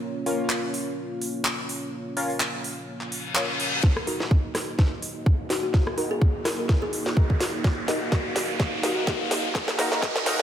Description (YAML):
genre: bass house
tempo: 126 BPM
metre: 4/4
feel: swing 55% on 16ths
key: Eb minor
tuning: A4 = 443 Hz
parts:
  - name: dark analog pad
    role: sustained chords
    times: 0.0-10.4 s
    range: Bb3 to F5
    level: -33 LUFS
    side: right 2 dB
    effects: chorus, vintage 12-bit sampler grit, sidechain pumping
  - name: band-passed chord stab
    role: stabs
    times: 0.3-10.4 s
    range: Bb3 to Bb4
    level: -31 LUFS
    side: left 1 dB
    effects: chorus, phaser, sidechain pumping, dub echo
  - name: garage drum kit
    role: drums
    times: 0.3-10.4 s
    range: handclaps, hi-hat, rim click, snare drum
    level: -28 LUFS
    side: equal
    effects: none
  - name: reverse cymbal and riser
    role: sound effects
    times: 3.1-10.4 s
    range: none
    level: -32 LUFS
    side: left 1 dB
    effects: none
  - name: electronic kick drum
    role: drums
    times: 3.8-10.1 s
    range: none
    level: -22 LUFS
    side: equal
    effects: none
  - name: kalimba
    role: melody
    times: 5.5-7.2 s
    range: Gb4 to Bb4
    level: -32 LUFS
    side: left 3 dB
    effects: dub echo
room: moderate lush hall reverb, RT60 2.2 s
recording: high-pass filter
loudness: -23 LUFS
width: side -10 dB against mid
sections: 0.0-3.8 A section; 3.8-10.4 B section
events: reverse cymbal 3.1-3.8; build-up 3.8-10.4; drum fill 3.8-10.4; riser 3.8-10.4; filter sweep on synth stab 3.8-10.4; filter sweep 3.8-10.4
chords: 0.0 Bbm; 3.8 Ebm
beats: | 0.03 0.50 0.98 1.45 | 1.93 2.41 2.88 3.36 | 3.83 4.31 4.79 5.26 | 5.74 6.22 6.69 7.17 | 7.64 8.12 8.60 9.07 | 9.55 10.03